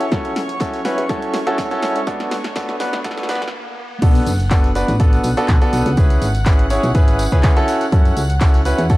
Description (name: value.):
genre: piano house.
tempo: 123 BPM.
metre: 4/4.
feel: swing 54% on 16ths.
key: B dorian.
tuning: A4 = 440 Hz.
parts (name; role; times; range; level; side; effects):
warm chamber violin section; sustained chords; 0.0-9.0 s; C#5 to F#6; -30 LUFS; equal; sidechain pumping.
clear concert grand piano; riff; 0.0-9.0 s; B3 to C#5; -20 LUFS; equal; sidechain pumping, low-pass filter, tape echo.
punchy analog drum machine; drums; 0.0-9.0 s; crash cymbal, handclaps, hi-hat, snare drum; -28 LUFS; equal; none.
riser; sound effects; 0.0-4.0 s; none; -32 LUFS; left 2 dB; none.
solid FM bass; bass; 0.1-9.0 s; F#1 to F#2; -20 LUFS; equal; sidechain pumping, high-pass filter.
electronic kick drum; drums; 0.1-9.0 s; none; -14 LUFS; equal; overdrive.
jazz brush drum kit; drums; 0.1-9.0 s; hi-hat, snare drum; -41 LUFS; right 2 dB; none.
tambourine and congas; percussion; 4.0-9.0 s; none; -32 LUFS; left 1 dB; none.
room: studio reverb.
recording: dry, gritty hardware recording, cassette tape, high-pass filter.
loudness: -14 LUFS.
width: side -18 dB against mid.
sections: 0.0-4.0 A section; 4.0-9.0 B section.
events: build-up 0.0-4.0; drum fill 0.0-3.5; riser 0.0-4.0; filter sweep on grand piano 0.0-4.0; filter sweep 0.0-4.0; break 3.5-4.0; drop 4.0-9.0.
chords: 0.0 F#m7; 2.1 D6; 4.0 Bm7; 6.0 C#m7; 7.7 F#m7.